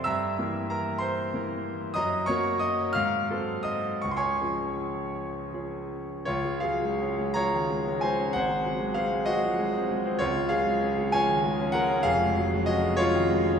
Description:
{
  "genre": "classical, romantic character piece for solo piano",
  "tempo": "52-66 BPM (dotted quarters)",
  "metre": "6/8",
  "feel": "rubato",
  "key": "Db major",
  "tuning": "A4 = 440 Hz",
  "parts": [
    { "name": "bright concert grand piano", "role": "solo", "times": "0.0-13.6 s", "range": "F1 to F6", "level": "-24 LUFS", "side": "equal", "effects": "none" }
  ],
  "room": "wet cathedral reverb, RT60 4.1 s",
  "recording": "recorded in a church or concert hall",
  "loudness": "-25 LUFS",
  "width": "side -7 dB against mid",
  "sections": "0.0-6.3 A section; 6.3-13.6 B section",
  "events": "none",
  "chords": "0.1 Edim/G; 2.0 Ebm/Gb; 2.9 Ab7b9; 4.0 Db; 8.3 Ab7; 10.2 Db; 12.0 Db/F"
}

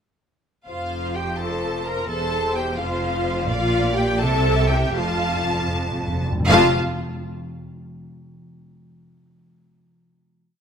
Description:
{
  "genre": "quick classical-period movement for symphony orchestra",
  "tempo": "76-87 BPM (dotted quarters)",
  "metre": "6/8",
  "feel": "rubato",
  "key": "F major",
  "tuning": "A4 = 438 Hz",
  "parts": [
    { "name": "rich studio violin section", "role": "melody", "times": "0.7-6.8 s", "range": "C5 to A5", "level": "-28 LUFS", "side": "left 1 dB", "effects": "none" },
    { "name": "clear studio violin section", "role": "second line", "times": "0.7-6.8 s", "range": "F5 to Bb5", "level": "-26 LUFS", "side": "left 1 dB", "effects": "none" },
    { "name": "clear studio viola section", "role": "accompaniment", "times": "0.7-6.8 s", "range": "F4 to Bb4", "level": "-25 LUFS", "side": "left 1 dB", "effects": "none" },
    { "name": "clear studio cello section", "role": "bass", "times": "0.7-6.8 s", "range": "E2 to C3", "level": "-26 LUFS", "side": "right 1 dB", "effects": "none" },
    { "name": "rich studio double bass section", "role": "bass", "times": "0.7-6.8 s", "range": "E1 to C2", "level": "-27 LUFS", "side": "right 2 dB", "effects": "none" },
    { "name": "timpani", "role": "percussion", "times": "5.0-6.7 s", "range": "F2", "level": "-28 LUFS", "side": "equal", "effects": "none" }
  ],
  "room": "moderate recital hall reverb, RT60 1.7 s",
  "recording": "none",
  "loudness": "-19 LUFS",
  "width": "side -7 dB against mid",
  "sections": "0.7-6.5 A section; 6.5-8.0 final chord",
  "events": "timpani fill 5.0-6.5",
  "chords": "0.7 F; 2.1 C/E; 2.8 F5; 3.5 Bb; 4.2 C; 5.0 F; 6.5 N.C."
}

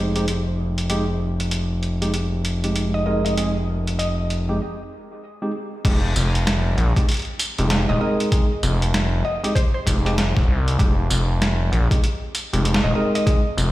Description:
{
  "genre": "glitch hop",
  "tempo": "97 BPM",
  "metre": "4/4",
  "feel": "swing 62% on 16ths",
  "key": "F minor",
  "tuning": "A4 = 440 Hz",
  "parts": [
    { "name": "tine electric piano", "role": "stabs", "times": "0.0-13.4 s", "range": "Ab3 to Bb4", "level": "-26 LUFS", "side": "right 1 dB", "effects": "overdrive, sidechain pumping, dub echo" },
    { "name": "gritty driven synth bass", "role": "bass", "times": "0.0-13.7 s", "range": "Eb1 to C2", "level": "-20 LUFS", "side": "equal", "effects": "none" },
    { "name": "boom bap sampler-style drum kit", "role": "drums", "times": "0.2-13.7 s", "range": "crash cymbal, hi-hat, snare drum, tambourine", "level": "-26 LUFS", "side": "equal", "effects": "overdrive" },
    { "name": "woody wave-folded pluck", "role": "melody", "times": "2.9-13.3 s", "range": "C5 to Eb5", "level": "-30 LUFS", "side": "equal", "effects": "chorus, cassette tape, dub echo" },
    { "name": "electronic kick drum", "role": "drums", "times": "5.8-13.4 s", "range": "none", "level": "-18 LUFS", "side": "equal", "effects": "overdrive" }
  ],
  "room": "light reverb, digital ambience",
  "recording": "played on a big sound system in a bare room, stone room reverb",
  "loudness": "-18 LUFS",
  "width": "side -16 dB against mid",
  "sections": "0.0-5.8 A section; 5.8-13.7 B section",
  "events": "break 4.6-5.8; drop 5.8-13.7",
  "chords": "0.0 Fm7"
}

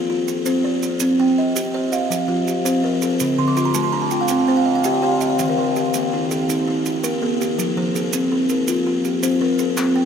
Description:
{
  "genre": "southern african traditional, mbira-style interlocking cycle",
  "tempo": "110 BPM (dotted quarters)",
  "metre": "12/8",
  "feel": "straight",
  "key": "unclear",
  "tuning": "A4 = 440 Hz",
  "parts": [
    { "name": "buzzing kalimba", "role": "arpeggios", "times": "0.0-10.1 s", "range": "D3-29c to G5", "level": "-19 LUFS", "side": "left 2 dB", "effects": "none" },
    { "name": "buzzing kalimba", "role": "arpeggios", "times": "0.0-10.1 s", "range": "D3-29c to D6-29c", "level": "-23 LUFS", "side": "right 4 dB", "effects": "none" },
    { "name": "maracas", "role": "percussion", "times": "0.3-9.9 s", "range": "none", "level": "-30 LUFS", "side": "right 9 dB", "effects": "none" },
    { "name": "group handclap", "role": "percussion", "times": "9.8-9.9 s", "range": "none", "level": "-28 LUFS", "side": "left 5 dB", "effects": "none" }
  ],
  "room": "wet huge ambient reverb, RT60 8.2 s",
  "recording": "in a vast, echoing space",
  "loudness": "-17 LUFS",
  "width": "side -7 dB against mid",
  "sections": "0.0-1.0 A section; 1.0-10.1 B section",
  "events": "kalimba fill 3.2-5.4",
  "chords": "0.0 F; 1.0 Cm; 2.1 F; 3.2 Dm; 4.3 C5; 5.4 Eb; 7.6 F"
}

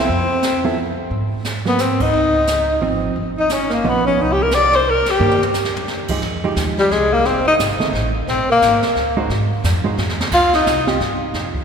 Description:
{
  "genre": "jazz, small-group swing and bop",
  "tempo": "176 BPM",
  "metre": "3/4",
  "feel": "swing 62% on 8ths",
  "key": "C minor, F minor from 6.2 s",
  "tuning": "A4 = 440 Hz",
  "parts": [
    { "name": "warm tenor saxophone", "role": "melody", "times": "0.0-10.9 s", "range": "G3 to D5", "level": "-17 LUFS", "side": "left 2 dB", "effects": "none" },
    { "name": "warm alto saxophone", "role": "second line", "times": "0.0-10.9 s", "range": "A#3 to F5", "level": "-24 LUFS", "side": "right 3 dB", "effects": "none" },
    { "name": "hollow-body jazz guitar", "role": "accompaniment", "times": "0.0-11.0 s", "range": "Eb3 to C5", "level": "-24 LUFS", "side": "right 4 dB", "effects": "none" },
    { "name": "upright bass", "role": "bass", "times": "0.0-11.6 s", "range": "F1 to Ab2", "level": "-23 LUFS", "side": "right 1 dB", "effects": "none" },
    { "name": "jazz brush drum kit", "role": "drums", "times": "0.1-11.6 s", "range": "brushed snare drum, crash cymbal, hi-hat, kick drum, ride cymbal, snare drum, toms", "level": "-26 LUFS", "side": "right 1 dB", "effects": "none" }
  ],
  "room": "wet church reverb, RT60 3.3 s",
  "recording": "recorded in a church or concert hall",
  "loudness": "-15 LUFS",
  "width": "side -6 dB against mid",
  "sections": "0.0-6.2 A section; 6.2-11.6 B section",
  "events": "band accent 2.0, 5.0; drum fill 5.2-5.9, 10.0-10.3",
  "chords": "0.1 F5; 1.1 Ab7; 2.1 Dbmaj9; 3.2 G7alt; 4.2 Cm9; 6.2 Fm9; 7.3 F; 8.3 Bbm9; 9.3 Ab5; 10.3 Dbmaj9#11"
}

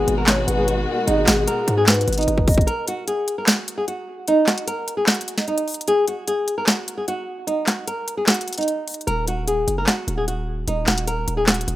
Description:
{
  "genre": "hip hop, trap",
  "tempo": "150 BPM",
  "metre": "4/4",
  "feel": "half-time",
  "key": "Eb minor",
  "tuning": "A4 = 437 Hz",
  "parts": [
    { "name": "nylon-string guitar", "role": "melody", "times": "0.0-11.8 s", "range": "Eb4 to Bb4", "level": "-22 LUFS", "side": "equal", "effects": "low-pass filter" },
    { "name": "dark concert grand piano", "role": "accompaniment", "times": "0.0-2.7 s", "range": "Ab3 to Gb4", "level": "-32 LUFS", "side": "equal", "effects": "none" },
    { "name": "dark studio string section", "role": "sustained chords", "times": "0.0-2.6 s", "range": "Cb3 to Gb4", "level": "-27 LUFS", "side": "left 2 dB", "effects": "none" },
    { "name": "distorted 808-style bass", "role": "bass", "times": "0.0-2.7, 9.1-11.8 s", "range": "Eb1 to Ab2", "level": "-24 LUFS", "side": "equal", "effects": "distortion" },
    { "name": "trap drum kit", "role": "drums", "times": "0.1-11.8 s", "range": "handclaps, hi-hat, kick drum, snare drum", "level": "-19 LUFS", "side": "equal", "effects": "none" },
    { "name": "hollow clarinet-like synth lead", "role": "second line", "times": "0.3-2.7 s", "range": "Ab4 to Eb5", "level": "-25 LUFS", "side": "left 2 dB", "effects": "chorus, tape echo" }
  ],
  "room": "studio reverb",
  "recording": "rough home demo mix",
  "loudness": "-18 LUFS",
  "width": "side -15 dB against mid",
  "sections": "0.0-2.7 A section; 2.7-11.8 B section",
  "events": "drum fill 2.3-2.7; break 2.7-9.1",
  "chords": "0.0 Abm7; 2.7 N.C.; 9.1 Ebm"
}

